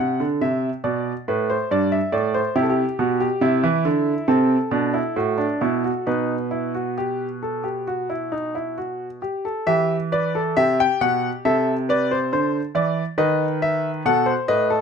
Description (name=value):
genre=classical, baroque-style 3-part fugue for grand piano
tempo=69 BPM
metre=4/4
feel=straight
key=E minor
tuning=A4 = 437 Hz
part: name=warm concert grand piano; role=solo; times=0.0-14.8 s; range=G2 to G5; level=-19 LUFS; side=equal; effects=none
room=light reverb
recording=close, detailed microphones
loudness=-19 LUFS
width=side -6 dB against mid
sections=0.0-9.7 A section; 9.7-14.8 B section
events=none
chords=0.0 D7; 0.8 G; 2.6 C; 4.3 F#dim; 6.1 B; 9.7 Em; 11.4 Cmaj13; 13.2 B7/D#